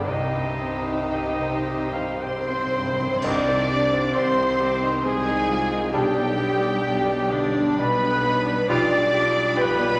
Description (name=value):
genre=classical, romantic movement for piano and orchestra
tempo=54-68 BPM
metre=3/4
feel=rubato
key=C minor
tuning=A4 = 439 Hz
part: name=clear concert grand piano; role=melody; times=0.0-10.0 s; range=B1 to D5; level=-29 LUFS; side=equal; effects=none
part: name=rich studio violin section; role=melody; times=0.0-10.0 s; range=C5 to D6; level=-35 LUFS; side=equal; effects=none
part: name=clear clarinet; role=second line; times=0.0-9.0 s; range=C4 to G5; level=-32 LUFS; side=equal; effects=none
part: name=large flute ensemble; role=second line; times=0.0-10.0 s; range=D4 to D5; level=-29 LUFS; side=equal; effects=none
part: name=rich studio violin section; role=second line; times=0.0-10.0 s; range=D4 to D5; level=-34 LUFS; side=equal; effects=none
part: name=rich studio viola section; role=accompaniment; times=0.0-10.0 s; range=Eb3 to G4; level=-37 LUFS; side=equal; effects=none
part: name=dark French horn section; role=sustained chords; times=0.0-10.0 s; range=C3 to F4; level=-34 LUFS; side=equal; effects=none
part: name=clear studio double bass section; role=bass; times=0.0-10.0 s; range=B1 to C2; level=-40 LUFS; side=equal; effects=none
part: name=rich studio cello section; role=bass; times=0.0-10.0 s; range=C3 to D4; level=-35 LUFS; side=equal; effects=none
part: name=cymbal swell, clash cymbals and concert bass drum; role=percussion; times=0.1-5.0 s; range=none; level=-41 LUFS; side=equal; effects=none
part: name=timpani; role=percussion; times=0.1-3.2 s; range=C3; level=-41 LUFS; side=equal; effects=none
part: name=mellow trumpet section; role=stabs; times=2.2-10.0 s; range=D4 to D5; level=-30 LUFS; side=equal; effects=none
part: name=warm bassoon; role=accompaniment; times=3.2-9.0 s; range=Eb3 to G3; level=-34 LUFS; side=equal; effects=none
part: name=mellow tuba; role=bass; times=3.2-10.0 s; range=B1 to C2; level=-36 LUFS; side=equal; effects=none
room=wet recital hall reverb, RT60 1.4 s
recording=none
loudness=-23 LUFS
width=mono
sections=0.0-3.2 A section; 3.2-10.0 B section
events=timpani fill 0.1-3.2; band accent 3.2-4.1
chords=0.1 Cm; 5.9 G/B; 8.7 G7/B